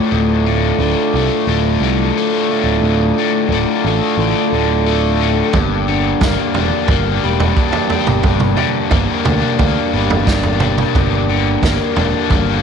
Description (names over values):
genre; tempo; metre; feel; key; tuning
psychedelic rock; 88 BPM; 4/4; straight; unclear; A4 = 439 Hz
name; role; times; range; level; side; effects
percussive tonewheel organ; sustained chords; 0.0-12.6 s; A3 to D5; -20 LUFS; right 9 dB; slow rotary speaker
biting overdriven guitar; riff; 0.0-12.6 s; D2 to D4; -17 LUFS; left 11 dB; harmonic tremolo
picked electric bass; bass; 0.1-12.6 s; D1 to D2; -18 LUFS; right 1 dB; none
vintage drum kit; drums; 5.5-12.5 s; kick drum, snare drum, toms; -18 LUFS; right 3 dB; none
room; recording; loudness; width
moderate echo chamber reverb, RT60 1.6 s, small room ambience; 1960s-style stereo with parts hard left and right; -13 LUFS; side -6 dB against mid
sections
0.0-12.6 A section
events
none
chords
0.0 Dm; 5.5 Gm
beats
| 0.12 0.79 1.47 2.15 | 2.83 3.50 4.18 4.86 | 5.54 6.21 6.89 7.57 | 8.25 8.93 9.61 10.29 | 10.96 11.64 12.32